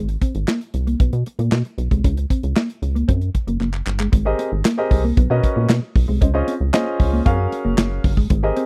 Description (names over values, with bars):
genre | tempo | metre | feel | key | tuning
early-eighties boogie funk | 115 BPM | 4/4 | straight | Ab major | A4 = 440 Hz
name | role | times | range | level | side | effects
mellow electric guitar | riff | 0.0-8.7 s | Ab3 to Db4 | -27 LUFS | equal | ensemble chorus
rubbery square bass | bass | 0.0-8.5 s | Gb1 to Cb3 | -23 LUFS | equal | none
modern studio drum kit | drums | 0.1-8.7 s | handclaps, hi-hat, kick drum, snare drum | -20 LUFS | equal | none
warm concert grand piano | accompaniment | 4.3-8.7 s | C4 to F5 | -24 LUFS | equal | none
room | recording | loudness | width
small room ambience | dry, close 1970s-style studio recording | -19 LUFS | mono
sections
0.0-4.1 A section; 4.1-8.7 B section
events
drum fill 3.6-4.1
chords
0.0 Abadd9; 1.0 Abmadd9/Cb; 2.0 Bbmadd9/Db; 3.1 Gbadd9; 4.1 Abmaj9; 5.2 Bmaj9; 6.2 Dbmaj9; 7.3 Gbmaj9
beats
0.48 1.00 1.52 | 2.04 2.56 3.09 3.61 | 4.13 4.65 5.17 5.70 | 6.22 6.74 7.26 7.78 | 8.30